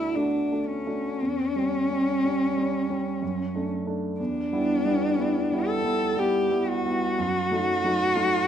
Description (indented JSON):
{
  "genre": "classical, romantic duo for cello and grand piano",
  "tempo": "56-63 BPM",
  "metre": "3/4",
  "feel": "rubato",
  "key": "unclear",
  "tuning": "A4 = 440 Hz",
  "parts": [
    { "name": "warm cello", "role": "melody", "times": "0.0-8.5 s", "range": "C#4 to A4", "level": "-25 LUFS", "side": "left 1 dB", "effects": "none" },
    { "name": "clear grand piano", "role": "accompaniment", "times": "0.0-8.5 s", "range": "D2 to F#4", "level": "-28 LUFS", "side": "right 2 dB", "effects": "none" }
  ],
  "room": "moderate recital hall reverb, RT60 1.4 s",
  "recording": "minimal, uncompressed stereo recording",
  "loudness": "-23 LUFS",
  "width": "side -9 dB against mid",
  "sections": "0.0-8.5 A section",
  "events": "none",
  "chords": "0.0 D; 1.2 C#dim/E; 3.2 D/F#; 4.2 Em7; 7.2 D#dim/F#"
}